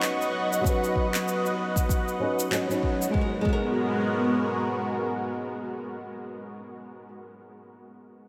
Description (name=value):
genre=sunset chillout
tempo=96 BPM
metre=4/4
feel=swing 57% on 16ths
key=G# minor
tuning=A4 = 440 Hz
part: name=flamenco guitar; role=accompaniment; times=0.0-7.1 s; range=F#3 to C#5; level=-32 LUFS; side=equal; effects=low-pass filter, tape echo
part: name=lush unison pad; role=sustained chords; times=0.0-6.4 s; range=G#3 to C#6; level=-31 LUFS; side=equal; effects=chorus, phaser
part: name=electronic handclaps and shaker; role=drums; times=0.0-3.1 s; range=none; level=-38 LUFS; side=equal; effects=studio reverb
part: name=electronic kick drum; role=drums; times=0.6-3.7 s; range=none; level=-29 LUFS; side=equal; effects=studio reverb
room=wet huge ambient reverb, RT60 8.1 s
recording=dreamy mix soaked in reverb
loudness=-27 LUFS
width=mono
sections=0.0-3.1 A section; 3.1-5.6 B section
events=none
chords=0.0 C#9sus4; 3.1 G#m9